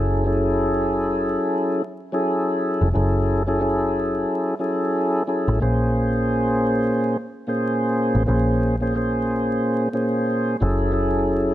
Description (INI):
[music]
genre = hip hop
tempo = 90 BPM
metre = 4/4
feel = swing 59% on 16ths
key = unclear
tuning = A4 = 440 Hz
[part]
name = tonewheel organ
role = accompaniment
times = 0.0-11.5 s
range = Bb2 to C5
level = -20 LUFS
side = equal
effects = slow rotary speaker, high-pass filter, low-pass filter, plate reverb
[part]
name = deep dub picked electric bass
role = bass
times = 0.0-11.5 s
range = F1 to Bb1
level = -23 LUFS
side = equal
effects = none
[sound]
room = moderate small room reverb, RT60 0.5 s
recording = vinyl crackle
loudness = -19 LUFS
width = side -13 dB against mid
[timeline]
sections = 0.0-11.5 A section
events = none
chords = 0.0 Gbm9; 5.6 Bbm9; 10.6 Gbm9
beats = | 0.28 0.94 1.61 2.28 | 2.94 3.61 4.28 4.95 | 5.61 6.28 6.95 7.61 | 8.28 8.95 9.61 10.28 | 10.95